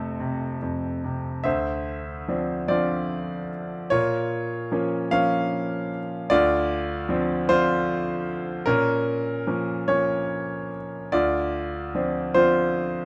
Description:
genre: classical, lyrical solo piano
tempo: 50 BPM (dotted quarters)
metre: 6/8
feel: rubato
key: D minor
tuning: A4 = 440 Hz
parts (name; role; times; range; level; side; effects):
- bright concert grand piano; solo; 0.0-13.1 s; D2 to F5; -25 LUFS; equal; none
room: little or no reverb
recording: close, detailed microphones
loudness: -25 LUFS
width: mono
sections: 0.0-1.5 A section; 1.5-13.1 B section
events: none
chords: 0.0 F; 1.5 Dm7; 3.9 Bbm; 6.3 Dm7; 8.7 Bbm; 11.1 Dm7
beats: 0.20 | 1.45 2.69 | 3.91 5.11 | 6.31 7.48 | 8.67 9.88 | 11.12 12.35

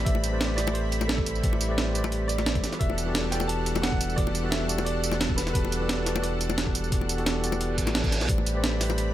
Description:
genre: liquid drum and bass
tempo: 175 BPM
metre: 4/4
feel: straight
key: A minor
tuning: A4 = 440 Hz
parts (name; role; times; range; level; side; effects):
- bright grand piano; melody; 0.0-7.6 s; A4 to A5; -36 LUFS; right 2 dB; tape echo
- mellow tine electric piano; accompaniment; 0.0-9.1 s; E3 to D5; -31 LUFS; equal; tape echo
- lush unison pad; sustained chords; 0.0-9.1 s; G3 to B5; -35 LUFS; equal; chorus, sidechain pumping
- sub bass with octave; bass; 0.0-9.1 s; E1 to B1; -30 LUFS; equal; none
- breakbeat sampler-style drum kit; drums; 0.1-9.1 s; hi-hat, snare drum, tambourine; -29 LUFS; right 2 dB; none
- electronic kick drum; drums; 0.1-8.4 s; none; -28 LUFS; equal; none
- bongos; percussion; 0.1-9.0 s; none; -34 LUFS; left 6 dB; none
- reverse cymbal; sound effects; 7.7-8.3 s; none; -35 LUFS; right 4 dB; none
room: little or no reverb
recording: none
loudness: -24 LUFS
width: side -13 dB against mid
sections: 0.0-9.1 A section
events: reverse cymbal 7.7-8.3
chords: 0.0 Am11; 2.6 Em11; 8.3 Am11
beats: | 0.06 0.41 0.75 1.09 | 1.44 1.78 2.12 2.46 | 2.81 3.15 3.49 3.84 | 4.18 4.52 4.86 5.21 | 5.55 5.89 6.24 6.58 | 6.92 7.26 7.61 7.95 | 8.29 8.64 8.98

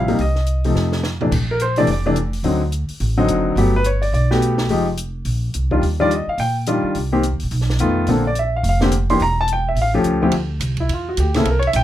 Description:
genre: jazz piano trio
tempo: 213 BPM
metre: 4/4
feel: swing 61% on 8ths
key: D minor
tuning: A4 = 440 Hz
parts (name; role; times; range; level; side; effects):
- warm baby grand piano; melody; 0.0-11.8 s; D2 to C6; -18 LUFS; left 1 dB; none
- upright bass; bass; 0.0-11.8 s; E1 to Bb2; -20 LUFS; right 1 dB; none
- compact cocktail drum kit; drums; 0.1-11.8 s; crash cymbal, hi-hat, kick drum, ride cymbal, snare drum, toms; -29 LUFS; right 1 dB; none
room: light reverb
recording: none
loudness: -16 LUFS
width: side -12 dB against mid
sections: 0.0-1.3 A section; 1.3-10.3 B section; 10.3-11.8 C section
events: drum fill 0.8-1.3; grand piano solo 10.3-11.8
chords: 0.2 Cm; 0.8 F7; 1.3 Bbadd9; 2.4 D7b9; 3.6 Gmaj9; 4.7 Fm9; 5.3 Bbsus2; 5.8 Ebmaj9; 6.9 Cm7; 7.5 B7#11; 8.1 Bbadd9; 9.2 Edim; 9.8 A7b13; 10.3 Dsus2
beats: | 0.19 0.47 0.75 1.03 | 1.31 1.60 1.88 2.16 | 2.44 2.72 3.00 3.29 | 3.57 3.85 4.13 4.41 | 4.70 4.98 5.26 5.54 | 5.82 6.10 6.38 6.67 | 6.95 7.23 7.51 7.79 | 8.07 8.36 8.64 8.92 | 9.20 9.48 9.77 10.05 | 10.33 10.61 10.89 11.18 | 11.46 11.74

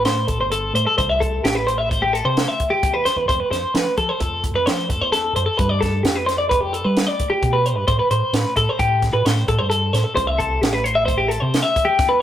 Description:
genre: math rock and midwest emo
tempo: 131 BPM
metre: 5/4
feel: straight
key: unclear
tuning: A4 = 440 Hz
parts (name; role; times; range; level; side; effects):
- twelve-string electric guitar; arpeggios; 0.0-12.2 s; G4 to E5; -19 LUFS; left 1 dB; spring reverb
- fingered electric bass; bass; 0.0-12.2 s; G1 to G3; -23 LUFS; right 1 dB; none
- compact cocktail drum kit; drums; 0.1-12.1 s; hi-hat, kick drum, snare drum; -23 LUFS; right 1 dB; none
room: moderate small room reverb, RT60 0.5 s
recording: rough rehearsal-room recording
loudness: -17 LUFS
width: side -11 dB against mid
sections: 0.0-12.2 A section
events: none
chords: 0.0 Am7; 1.0 C6; 3.3 Fmaj7; 5.6 G7; 7.9 Am7; 10.2 C6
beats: 0.05 0.52 | 0.98 1.44 1.90 2.36 2.82 | 3.28 3.75 4.21 4.67 5.12 | 5.58 6.04 6.50 6.96 7.42 | 7.88 8.33 8.79 9.24 9.70 | 10.16 10.61 11.07 11.52 11.98

